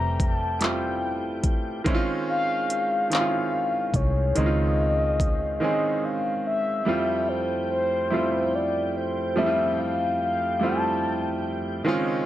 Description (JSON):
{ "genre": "slow six-eight R&B", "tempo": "48 BPM (dotted quarters)", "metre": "6/8", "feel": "straight", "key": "unclear", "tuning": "A4 = 440 Hz", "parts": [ { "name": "mellow horn-like synth lead", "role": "melody", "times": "0.0-11.6 s", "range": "C5 to Bb5", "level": "-26 LUFS", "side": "left 2 dB", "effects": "chorus, slapback echo" }, { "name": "clear baby grand piano", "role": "accompaniment", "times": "0.0-12.3 s", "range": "Eb3 to Ab4", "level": "-26 LUFS", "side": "right 2 dB", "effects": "plate reverb" }, { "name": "tonewheel organ", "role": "sustained chords", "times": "0.0-12.3 s", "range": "F2 to G5", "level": "-33 LUFS", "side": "left 1 dB", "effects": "chorus vibrato, wide subtle chorus" }, { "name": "vintage muted fingered electric bass", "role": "bass", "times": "0.0-5.6 s", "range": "F1 to Db2", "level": "-26 LUFS", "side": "equal", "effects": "none" }, { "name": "smooth R&B drum kit", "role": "drums", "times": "0.2-5.4 s", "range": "handclaps, hi-hat, kick drum", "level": "-25 LUFS", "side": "equal", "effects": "overdrive" } ], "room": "moderate studio reverb, RT60 0.5 s", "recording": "dark, warm production", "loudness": "-22 LUFS", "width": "side -13 dB against mid", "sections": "0.0-6.9 A section; 6.9-12.3 A section", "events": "break 5.6-6.9", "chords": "0.0 Fmaj9; 1.9 Dbmaj9; 6.9 Fmaj9" }